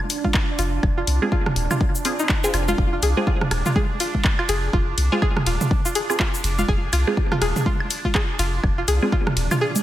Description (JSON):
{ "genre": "minimal techno", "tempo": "123 BPM", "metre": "4/4", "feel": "swing 59% on 16ths", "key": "F dorian", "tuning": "A4 = 439 Hz", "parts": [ { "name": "garage drum kit", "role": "percussion", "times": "0.0-9.8 s", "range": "congas, rim click, toms, woodblock", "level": "-26 LUFS", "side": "right 2 dB", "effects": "tape echo" }, { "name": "bubbling stepped-filter texture", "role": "texture", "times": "0.0-9.8 s", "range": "D4", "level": "-31 LUFS", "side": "right 4 dB", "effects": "chorus, built-in reverb, sidechain pumping" }, { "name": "house drum kit", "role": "drums", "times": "0.1-9.8 s", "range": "handclaps, hi-hat, ride cymbal, shaker", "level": "-26 LUFS", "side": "left 1 dB", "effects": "none" }, { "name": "string-like resonator pluck", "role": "riff", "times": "0.2-9.7 s", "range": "Eb4 to Ab4", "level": "-27 LUFS", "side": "left 1 dB", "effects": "chorus, sidechain pumping, tape echo" }, { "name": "electronic kick drum", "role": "drums", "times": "0.2-9.2 s", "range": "none", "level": "-22 LUFS", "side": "equal", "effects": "none" }, { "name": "punchy sub bass", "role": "bass", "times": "0.6-9.5 s", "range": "Eb1 to C2", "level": "-23 LUFS", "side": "equal", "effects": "tube saturation, sidechain pumping" }, { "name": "filtered dub chord stab", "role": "stabs", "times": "1.2-9.1 s", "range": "C4 to Ab4", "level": "-27 LUFS", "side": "right 1 dB", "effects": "phaser, cassette tape, tape echo" } ], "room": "light reverb", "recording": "none", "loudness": "-19 LUFS", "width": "side -13 dB against mid", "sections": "0.0-9.8 A section", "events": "kick drops out 9.6", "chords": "0.0 Fm" }